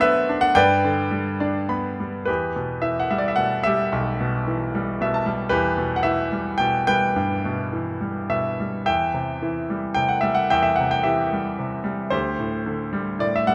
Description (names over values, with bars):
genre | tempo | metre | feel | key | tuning
classical, lyrical solo piano | 102-115 BPM | 3/4 | rubato | E minor | A4 = 441 Hz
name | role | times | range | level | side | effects
bright grand piano | solo | 0.0-13.5 s | B1 to B5 | -22 LUFS | equal | none
room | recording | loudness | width
moderate recital hall reverb, RT60 1.4 s | none | -23 LUFS | mono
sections
0.0-2.3 A section; 2.3-13.5 B section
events
grand piano fill 1.1-2.3, 4.7-5.5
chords
0.0 Bm; 0.6 G; 2.3 Em; 8.9 C/E; 12.1 D7sus4